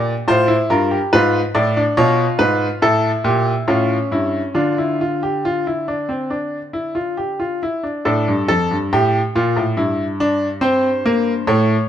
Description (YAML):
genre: classical, baroque-style 3-part fugue for grand piano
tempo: 70 BPM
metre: 4/4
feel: straight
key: D minor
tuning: A4 = 440 Hz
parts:
  - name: bright baby grand piano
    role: solo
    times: 0.0-11.9 s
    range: F2 to D5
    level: -15 LUFS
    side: equal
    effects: none
room: light reverb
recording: close, detailed microphones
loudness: -15 LUFS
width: side -10 dB against mid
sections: 0.0-8.0 A section; 8.0-11.9 B section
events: none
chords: 0.0 Gm; 1.1 G#dim7; 2.8 A7; 4.6 Dm; 9.8 Edim/G